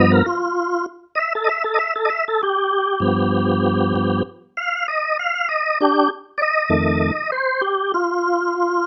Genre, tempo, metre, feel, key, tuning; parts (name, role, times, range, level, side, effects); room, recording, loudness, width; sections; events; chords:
blues; 65 BPM (dotted quarters); 12/8; straight; A4 = 440 Hz
tonewheel organ; sustained chords; 0.0-8.9 s; F2 to F5; -19 LUFS; equal; slow rotary speaker, chorus vibrato
moderate studio reverb, RT60 0.6 s; rough home demo mix; -20 LUFS; mono
0.0-8.9 A section
tonewheel organ solo 0.0-8.9
0.0 G7; 6.7 F7